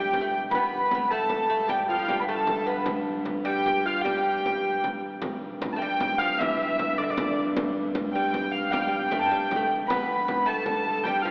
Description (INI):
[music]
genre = medieval dance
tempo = 103 BPM (dotted quarters)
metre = 6/8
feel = straight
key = G mixolydian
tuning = A4 = 440 Hz
[part]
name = dark hurdy-gurdy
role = melody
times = 0.0-11.3 s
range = D5 to B5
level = -25 LUFS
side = equal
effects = none
[part]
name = bright reedy bass recorder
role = second line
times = 0.0-4.8, 9.9-11.3 s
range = E4 to B4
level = -32 LUFS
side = equal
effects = none
[part]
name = lute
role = second line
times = 0.0-11.3 s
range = D3 to B3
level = -33 LUFS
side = equal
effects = none
[part]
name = rich viola da gamba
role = drone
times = 0.0-11.3 s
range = G2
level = -34 LUFS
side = equal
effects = none
[part]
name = frame drum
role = percussion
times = 0.1-11.2 s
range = none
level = -33 LUFS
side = equal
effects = none
[sound]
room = wet church reverb, RT60 3.2 s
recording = AM radio sound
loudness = -23 LUFS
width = side -34 dB against mid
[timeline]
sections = 0.0-5.2 A section; 5.2-11.3 A section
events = none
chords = none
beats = | 0.52 1.11 | 1.70 2.28 | 2.87 3.46 | 4.04 4.63 | 5.21 5.80 | 6.38 6.97 | 7.55 8.13 | 8.72 9.30 | 9.88 10.46 | 11.04